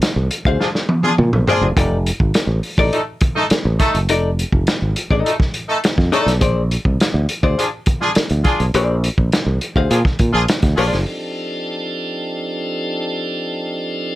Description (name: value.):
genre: funk.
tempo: 103 BPM.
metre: 4/4.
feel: straight.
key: F mixolydian.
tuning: A4 = 440 Hz.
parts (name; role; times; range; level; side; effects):
vintage drum kit; drums; 0.0-11.0 s; hi-hat, kick drum, snare drum, toms; -18 LUFS; equal; none.
fingered electric bass; bass; 0.2-11.0 s; F1 to Bb2; -18 LUFS; equal; none.
vintage hollow-body jazz guitar; accompaniment; 0.5-11.0 s; Eb4 to F5; -19 LUFS; left 4 dB; none.
clear horn section; second line; 0.6-11.0 s; A3 to A4; -19 LUFS; equal; none.
tonewheel organ; sustained chords; 11.1-14.2 s; F3 to A4; -22 LUFS; equal; slow rotary speaker, overdrive.
room: little or no reverb.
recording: none.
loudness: -15 LUFS.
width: side -16 dB against mid.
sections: 0.0-11.1 A section; 11.1-14.2 B section.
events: drum fill 0.6-1.8.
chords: 0.0 Bb9; 1.8 F6; 6.4 Bb9; 11.1 F13.